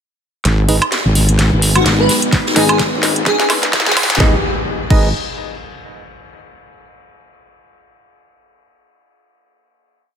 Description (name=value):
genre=bass house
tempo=128 BPM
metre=4/4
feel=swing 56% on 16ths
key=G# minor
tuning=A4 = 440 Hz
part: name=dark analog pad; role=sustained chords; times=1.5-4.4 s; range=G#3 to B4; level=-23 LUFS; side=left 2 dB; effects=chorus, phaser, sidechain pumping
part: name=wobble bass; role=bass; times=0.5-5.1 s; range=G#1 to B1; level=-15 LUFS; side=equal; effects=chorus, sidechain pumping
part: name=garage drum kit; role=drums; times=0.5-5.0 s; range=crash cymbal, hi-hat, snare drum, woodblock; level=-17 LUFS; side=right 1 dB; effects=high-pass filter on snare, small room ambience, high-pass filter on hats, high-pass filter on perc, high-pass filter on cymbals
part: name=soft-mallet drum kit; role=drums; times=0.5-4.2 s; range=ride cymbal, snare drum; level=-25 LUFS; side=left 1 dB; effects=sidechain pumping on cymbals, high-pass filter on cymbals, small room ambience, high-pass filter on snare, high-pass filter on room
part: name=riser and impact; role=sound effects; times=2.1-6.1 s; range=none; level=-24 LUFS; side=left 1 dB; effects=none
part: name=percussive organ stab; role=stabs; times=0.7-5.1 s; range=D#4 to D#5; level=-22 LUFS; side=right 3 dB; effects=chorus, sidechain pumping, ping-pong delay
part: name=airy dreamy lead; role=melody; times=1.8-4.1 s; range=F#4 to B4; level=-19 LUFS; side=equal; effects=chorus, ping-pong delay
part: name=electronic kick drum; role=drums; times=2.3-5.0 s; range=none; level=-14 LUFS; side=equal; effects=small room ambience
room=light reverb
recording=high-pass filter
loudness=-12 LUFS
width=side -8 dB against mid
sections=0.5-4.2 build; 4.2-6.1 final chord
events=build-up 0.5-4.2; drum fill 0.5-4.2; filter sweep on synth stab 0.5-4.2; filter sweep 0.5-4.2; riser 2.1-4.2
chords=0.5 G#m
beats=| 0.45 0.92 1.39 1.86 | 2.33 2.79 3.26 3.73 | 4.20 4.67 5.14 5.61